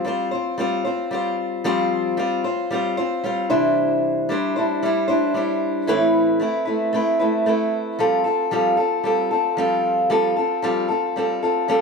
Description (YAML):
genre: rock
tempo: 114 BPM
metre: 4/4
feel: straight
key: unclear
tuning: A4 = 440 Hz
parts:
  - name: picked old ladder-braced acoustic guitar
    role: solo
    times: 0.0-11.8 s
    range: A2 to C5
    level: -18 LUFS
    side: equal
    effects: none
room: moderate echo chamber reverb, RT60 1.8 s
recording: none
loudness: -18 LUFS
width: side -4 dB against mid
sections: 0.0-8.0 A section; 8.0-11.8 B section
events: none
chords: 0.0 Fsus2; 3.5 Cadd9; 5.9 Amadd9; 8.0 Fadd9